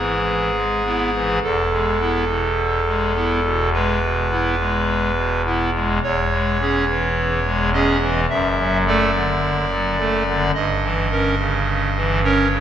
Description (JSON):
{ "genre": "classical, chorale-style piece for pipe organ", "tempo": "53 BPM", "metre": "4/4", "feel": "rubato", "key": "E major", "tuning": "A4 = 440 Hz", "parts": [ { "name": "pipe organ, clarinet reed", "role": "solo", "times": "0.0-12.6 s", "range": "E1 to E5", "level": "-17 LUFS", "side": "equal", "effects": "none" } ], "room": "wet church reverb, RT60 3.1 s", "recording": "none", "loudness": "-17 LUFS", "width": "side -10 dB against mid", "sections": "0.0-12.6 A section", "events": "none", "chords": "0.0 E/G#; 1.4 E; 6.0 C#m/E; 8.3 D/F#; 10.6 Gdim7" }